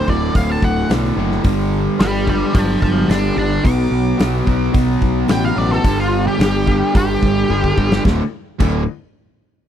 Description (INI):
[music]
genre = classic rock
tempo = 109 BPM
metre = 4/4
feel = straight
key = D major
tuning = A4 = 444 Hz
[part]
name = octave-fuzz lead guitar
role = melody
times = 0.0-8.0 s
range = F4 to D6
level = -21 LUFS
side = equal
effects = wah, distortion, slapback echo
[part]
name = cranked stack guitar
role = riff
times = 0.0-8.8 s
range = D2 to B3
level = -21 LUFS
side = left 15 dB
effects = overdrive
[part]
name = crunchy overdriven guitar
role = riff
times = 0.0-8.8 s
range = D2 to B3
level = -21 LUFS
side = right 12 dB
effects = none
[part]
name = growling picked electric bass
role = bass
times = 0.1-8.9 s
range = D1 to B1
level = -20 LUFS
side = equal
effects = overdrive
[part]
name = big rock drum kit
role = drums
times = 0.1-8.7 s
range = crash cymbal, hi-hat, kick drum, snare drum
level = -18 LUFS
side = equal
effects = none
[sound]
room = little or no reverb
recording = dry, close 1970s-style studio recording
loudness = -14 LUFS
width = side -10 dB against mid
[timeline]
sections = 0.0-8.0 A section; 8.0-9.7 B section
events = lead electric guitar solo 0.0-8.0; drum fill 7.5-8.0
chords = 0.0 D; 1.4 Gsus2; 3.6 Bm7; 5.8 G5; 8.0 D5